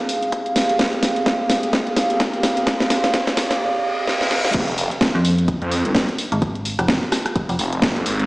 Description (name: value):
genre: bass house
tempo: 128 BPM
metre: 4/4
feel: swing 58% on 16ths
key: F minor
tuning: A4 = 440 Hz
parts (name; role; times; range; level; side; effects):
- dark analog pad; sustained chords; 0.0-8.3 s; C4 to F5; -23 LUFS; right 1 dB; wide subtle chorus, sidechain pumping
- riser, reverse cymbal and sub drop; sound effects; 0.2-6.4 s; none; -28 LUFS; equal; none
- house drum kit; drums; 0.1-8.3 s; crash cymbal, hi-hat, rim click, snare drum; -20 LUFS; equal; none
- electronic kick drum; drums; 0.3-7.9 s; none; -24 LUFS; equal; high-pass filter on kick, high-pass filter on room
- phased detuned saw bass; bass; 4.5-8.3 s; F1 to F2; -21 LUFS; equal; phaser, overdrive, sidechain pumping
- metallic FM bass; bass; 5.1-7.6 s; F1 to F2; -19 LUFS; equal; overdrive, sidechain pumping
room: wet lush hall reverb, RT60 2.0 s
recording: played on a big sound system in a bare room, stone room reverb, high-pass filter, small speaker sound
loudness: -17 LUFS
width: side -21 dB against mid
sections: 0.0-4.5 A section; 4.5-8.3 B section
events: build-up 0.0-4.5; drum fill 0.0-3.6, 4.1-4.5; riser 0.2-4.5; reverse cymbal 3.6-4.5; drop 4.5-8.3; impact 4.5-6.4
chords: 0.0 Fmadd9